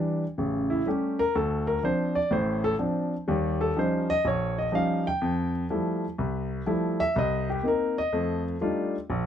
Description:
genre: solo jazz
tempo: 124 BPM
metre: 4/4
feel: swing 66% on 8ths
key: F major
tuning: A4 = 440 Hz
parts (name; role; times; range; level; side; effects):
- warm baby grand piano; solo; 0.0-9.3 s; A1 to G5; -24 LUFS; equal; none
room: light reverb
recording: close, detailed microphones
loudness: -24 LUFS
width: side -9 dB against mid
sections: 0.0-9.1 A section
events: grand piano solo 0.0-9.3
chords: 0.4 A7; 1.3 Dm7; 3.3 Eb9; 5.2 Fmaj9; 7.2 Cm7; 8.1 F13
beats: 0.37 0.85 | 1.34 1.82 2.31 2.79 | 3.27 3.76 4.24 4.73 | 5.21 5.70 6.18 6.67 | 7.15 7.63 8.12 8.61 | 9.09

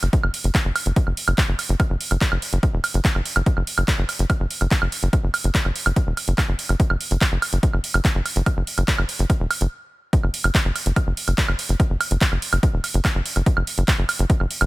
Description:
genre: psychedelic trance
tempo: 144 BPM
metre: 4/4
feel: straight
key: unclear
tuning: A4 = 441 Hz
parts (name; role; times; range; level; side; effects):
- tight sequencer bass; bass; 0.0-14.7 s; E1 to F#1; -20 LUFS; equal; none
- techno drum kit; drums; 0.0-14.7 s; handclaps, hi-hat, woodblock; -24 LUFS; right 2 dB; studio reverb
- electronic kick drum; drums; 0.1-14.4 s; none; -19 LUFS; equal; studio reverb
room: digital ambience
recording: none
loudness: -18 LUFS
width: side -20 dB against mid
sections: 0.0-10.1 A section; 10.1-14.7 B section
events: stop 9.7-10.1; drop 10.1-14.7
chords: none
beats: | 0.13 0.55 0.96 1.38 | 1.80 2.21 2.63 3.05 | 3.46 3.88 4.30 4.71 | 5.13 5.55 5.96 6.38 | 6.80 7.21 7.63 8.05 | 8.46 8.88 9.30 9.71 | 10.13 10.55 10.96 11.38 | 11.80 12.21 12.63 13.05 | 13.46 13.88 14.30

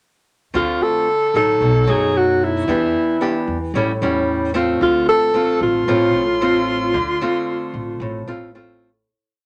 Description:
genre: bossa nova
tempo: 113 BPM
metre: 4/4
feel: straight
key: D minor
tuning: A4 = 439 Hz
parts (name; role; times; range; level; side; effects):
- nylon-string guitar; accompaniment; 0.5-9.1 s; A2 to G4; -22 LUFS; equal; none
- upright bass; bass; 0.5-9.0 s; A1 to F#2; -28 LUFS; equal; none
- breathy alto saxophone; melody; 0.6-8.5 s; E4 to A4; -20 LUFS; equal; none
room: moderate studio reverb, RT60 0.5 s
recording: none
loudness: -18 LUFS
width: mono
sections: 0.5-9.1 A section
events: fade-out 6.9-9.1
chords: 0.5 Dm7; 1.6 B7; 2.7 Em7; 3.7 A7; 4.8 Dm7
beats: | 0.54 1.08 1.61 2.14 | 2.68 3.21 3.74 4.28 | 4.81 5.34 5.87 6.41 | 6.94 7.47 8.01 8.54

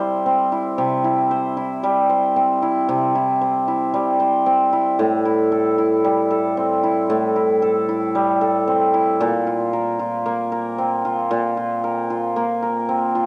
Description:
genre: folktronica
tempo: 114 BPM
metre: 4/4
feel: straight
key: C mixolydian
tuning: A4 = 440 Hz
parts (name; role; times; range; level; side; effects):
- hammered dulcimer; solo; 0.0-13.3 s; A2 to C5; -20 LUFS; equal; vintage 12-bit sampler grit
room: light reverb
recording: none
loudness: -20 LUFS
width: mono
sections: 0.0-13.3 A section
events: none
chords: 0.0 C; 5.0 Am7; 9.2 Bbsus2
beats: 0.26 | 0.78 1.31 1.83 2.36 | 2.89 3.41 3.94 4.47 | 4.99 5.52 6.04 6.57 | 7.10 7.62 8.15 8.68 | 9.20 9.73 10.26 10.78 | 11.31 11.83 12.36 12.89

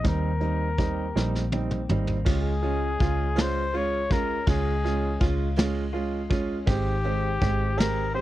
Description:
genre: six-eight pop ballad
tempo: 54 BPM (dotted quarters)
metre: 6/8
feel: straight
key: unclear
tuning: A4 = 440 Hz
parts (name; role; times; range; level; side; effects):
- clear flugelhorn; melody; 0.0-8.2 s; G4 to Db5; -30 LUFS; left 3 dB; none
- warm baby grand piano; accompaniment; 0.0-8.2 s; G3 to G4; -30 LUFS; right 6 dB; none
- direct-recorded clean electric guitar; arpeggios; 0.0-8.2 s; Eb3 to Ab4; -37 LUFS; left 10 dB; spring reverb
- vintage muted fingered electric bass; bass; 0.0-8.2 s; Ab1 to Eb2; -28 LUFS; equal; none
- vintage brush drum kit; drums; 0.0-8.2 s; crash cymbal, hi-hat, kick drum, ride cymbal, snare drum, toms; -26 LUFS; equal; none
room: little or no reverb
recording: dry, close 1970s-style studio recording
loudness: -23 LUFS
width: side -15 dB against mid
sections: 0.0-2.3 A section; 2.3-8.2 B section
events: drum fill 1.1-2.3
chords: 0.0 Eb6; 2.3 Db; 6.7 Abmaj7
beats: | 0.04 1.15 | 2.26 3.37 | 4.48 5.58 | 6.68 7.79

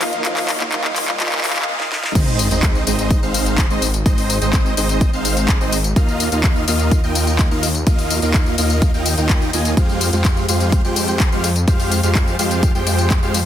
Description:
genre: EDM, festival progressive house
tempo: 126 BPM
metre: 4/4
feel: straight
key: Ab major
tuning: A4 = 440 Hz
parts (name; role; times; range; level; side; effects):
- warm concert grand piano; accompaniment; 0.0-2.2 s; F3 to F4; -29 LUFS; right 1 dB; sidechain pumping, tape echo
- dense compressed supersaw; riff; 0.0-13.4 s; Ab3 to Ab5; -20 LUFS; right 1 dB; sidechain pumping, tape echo
- detuned saw bass; bass; 0.0-13.5 s; Ab1 to F2; -21 LUFS; equal; sidechain pumping
- house drum kit; drums; 0.0-13.4 s; crash cymbal, handclaps, hi-hat, snare drum, tambourine; -22 LUFS; left 3 dB; overdrive
- riser and sub drop; sound effects; 0.0-4.1 s; none; -27 LUFS; equal; none
- electronic kick drum; drums; 2.2-13.2 s; none; -16 LUFS; equal; overdrive
room: light reverb, digital ambience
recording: dense, heavily limited modern master, high-pass filter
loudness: -15 LUFS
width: side -11 dB against mid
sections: 0.0-2.2 A section; 2.2-13.5 B section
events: build-up 0.0-2.2; drum fill 0.0-1.7, 1.8-2.2; riser 0.0-1.7; break 1.7-2.2; drop 2.2-13.5; impact 2.2-4.1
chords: 0.0 Ebsus2; 2.2 Ab; 6.0 Ebsus2; 9.8 Fmadd9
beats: | 0.25 0.72 1.20 1.68 | 2.15 2.63 3.11 3.58 | 4.06 4.53 5.01 5.49 | 5.96 6.44 6.92 7.39 | 7.87 8.34 8.82 9.30 | 9.77 10.25 10.72 11.20 | 11.68 12.15 12.63 13.11

